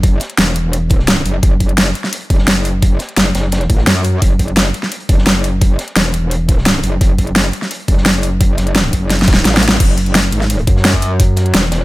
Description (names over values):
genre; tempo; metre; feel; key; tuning
dark technical drum and bass; 172 BPM; 4/4; straight; F# minor; A4 = 440 Hz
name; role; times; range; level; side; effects
metallic wobble bass; bass; 0.0-11.8 s; E1 to F#2; -15 LUFS; equal; chorus, tube saturation
crunchy breakbeat drum kit; drums; 0.0-11.8 s; hi-hat, snare drum; -26 LUFS; equal; high-pass filter on hats, high-pass filter on snare, high-pass filter on room
dubstep drum kit; drums; 0.0-11.8 s; crash cymbal, hi-hat, snare drum; -14 LUFS; equal; overdrive
electronic kick drum; drums; 0.0-11.3 s; none; -12 LUFS; equal; overdrive
room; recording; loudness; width
small room ambience; none; -11 LUFS; side -19 dB against mid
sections
0.0-9.8 A section; 9.8-11.8 A section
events
drop 0.0-9.8, 9.8-11.8; drum fill 9.1-9.8; band accent 9.7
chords
none